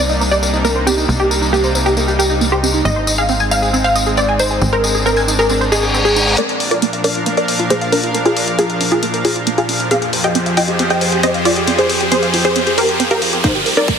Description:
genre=uplifting trance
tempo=136 BPM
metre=4/4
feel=straight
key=unclear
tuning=A4 = 440 Hz
part: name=wide unison pluck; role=melody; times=0.0-14.0 s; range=D4 to G5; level=-17 LUFS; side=equal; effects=cassette tape, sidechain pumping, dub echo
part: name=supersaw pad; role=sustained chords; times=0.0-14.0 s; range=F2 to F5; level=-19 LUFS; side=equal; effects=sidechain pumping
part: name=tight sequencer bass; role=bass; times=0.0-6.4 s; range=Ab1 to C2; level=-20 LUFS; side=equal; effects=sidechain pumping
part: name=tight sequenced synth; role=arpeggios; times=0.1-13.9 s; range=Bb3 to Ab5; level=-21 LUFS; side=right 3 dB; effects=chorus, phaser, sidechain pumping, dub echo
part: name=tambourine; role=percussion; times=0.1-6.4 s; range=none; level=-21 LUFS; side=left 3 dB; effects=none
part: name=reverse cymbal and riser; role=sound effects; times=5.7-14.0 s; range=none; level=-21 LUFS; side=left 1 dB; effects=none
part: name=electronic hi-hat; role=drums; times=6.4-14.0 s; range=none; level=-21 LUFS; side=left 3 dB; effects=high-pass filter on cymbals, studio reverb, high-pass filter on hats
part: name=electronic kick drum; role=drums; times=13.4-14.0 s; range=none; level=-19 LUFS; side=equal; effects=studio reverb
room=moderate lush hall reverb, RT60 2.1 s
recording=heavily compressed radio sound, high-pass filter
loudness=-12 LUFS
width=side -7 dB against mid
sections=0.0-6.4 A section; 6.4-14.0 B section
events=reverse cymbal 5.7-6.4; build-up 6.4-14.0; riser 6.4-14.0; filter sweep on synth pluck 6.4-14.0; drum fill 13.4-14.0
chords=0.0 Cm7; 2.9 Ab; 6.4 Bb; 9.9 Fmadd9; 13.4 Cm7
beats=0.20 0.65 | 1.09 1.53 1.97 2.41 | 2.85 3.29 3.73 4.17 | 4.62 5.06 5.50 5.94 | 6.38 6.82 7.26 7.71 | 8.15 8.59 9.03 9.47 | 9.91 10.35 10.79 11.23 | 11.68 12.12 12.56 13.00 | 13.44 13.88

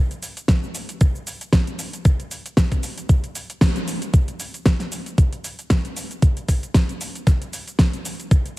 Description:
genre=nu-disco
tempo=115 BPM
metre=4/4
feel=swing 55% on 16ths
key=none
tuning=none
part: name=pop drum kit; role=drums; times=0.1-8.6 s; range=hi-hat, shaker, snare drum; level=-24 LUFS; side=equal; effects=none
part: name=electronic kick drum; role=drums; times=0.5-8.4 s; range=none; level=-16 LUFS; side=equal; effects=none
room=light reverb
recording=heavily compressed radio sound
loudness=-19 LUFS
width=side -19 dB against mid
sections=0.0-4.1 A section; 4.1-8.6 A section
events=drop 0.0-4.1, 4.1-8.6; band accent 3.6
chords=none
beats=0.49 1.01 1.53 | 2.05 2.57 3.10 3.62 | 4.14 4.66 5.18 5.70 | 6.23 6.75 7.27 7.79 | 8.31

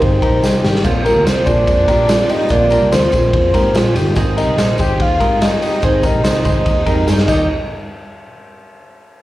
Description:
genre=jangly indie pop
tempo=144 BPM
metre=4/4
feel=straight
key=unclear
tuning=A4 = 439 Hz
part: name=soft octave-layered synth lead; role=melody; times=0.0-7.5 s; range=Bb4 to G5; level=-16 LUFS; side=equal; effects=chorus, slapback echo
part: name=rich studio violin section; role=second line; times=0.0-7.5 s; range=Bb3 to G4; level=-28 LUFS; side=equal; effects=none
part: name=picked steel-string acoustic guitar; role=accompaniment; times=0.0-7.5 s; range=Ab2 to Ab4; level=-21 LUFS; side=right 4 dB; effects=slapback echo
part: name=direct-recorded clean electric guitar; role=arpeggios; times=0.0-7.5 s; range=D4 to C5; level=-22 LUFS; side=left 3 dB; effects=slapback echo
part: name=picked electric bass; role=bass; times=0.0-7.5 s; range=G1 to Bb2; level=-18 LUFS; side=equal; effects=none
part: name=raw garage drum kit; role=drums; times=0.0-7.4 s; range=crash cymbal, hi-hat, kick drum, ride cymbal, snare drum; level=-18 LUFS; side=equal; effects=none
part: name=tambourine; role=percussion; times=0.4-7.5 s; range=none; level=-36 LUFS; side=left 2 dB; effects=none
room=light reverb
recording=live gig heard through the venue's PA, club reverb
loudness=-12 LUFS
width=side -16 dB against mid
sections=0.0-7.5 A section; 7.5-9.2 B section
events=drum fill 0.4-0.8, 7.1-7.5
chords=0.0 Cm; 0.8 Bbadd9; 4.2 Ab; 7.3 Eb; 7.5 N.C.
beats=0.02 0.43 | 0.85 1.26 1.68 2.09 | 2.51 2.92 3.34 3.75 | 4.17 4.58 5.00 5.41 | 5.83 6.24 6.66 7.07

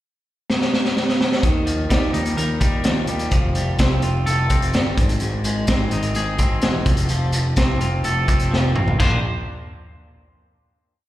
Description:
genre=quiet-loud alternative rock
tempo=127 BPM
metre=4/4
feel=straight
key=unclear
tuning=A4 = 441 Hz
part: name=raw garage drum kit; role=drums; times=0.5-9.1 s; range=crash cymbal, hi-hat, kick drum, snare drum, toms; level=-20 LUFS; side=equal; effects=none
part: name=twangy electric guitar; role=arpeggios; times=1.4-9.2 s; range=Ab2 to C5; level=-24 LUFS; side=left 1 dB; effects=lush chorus, slapback echo
part: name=fuzz picked electric bass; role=bass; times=1.4-9.2 s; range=E1 to Eb2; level=-22 LUFS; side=equal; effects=overdrive
room=small room ambience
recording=live gig heard through the venue's PA, recital hall reverb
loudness=-17 LUFS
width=side -14 dB against mid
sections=0.0-1.4 pickup bar; 1.4-9.0 verse; 9.0-10.9 final chord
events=drum fill 0.5-1.4, 8.5-9.0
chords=0.0 N.C.; 1.4 Ebadd9; 3.3 Fadd9; 5.0 Ab; 6.9 F; 9.0 Bbadd9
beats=0.01 0.49 0.96 | 1.44 1.91 2.38 2.86 | 3.33 3.80 4.27 4.75 | 5.22 5.69 6.16 6.63 | 7.11 7.58 8.05 8.52 | 8.99

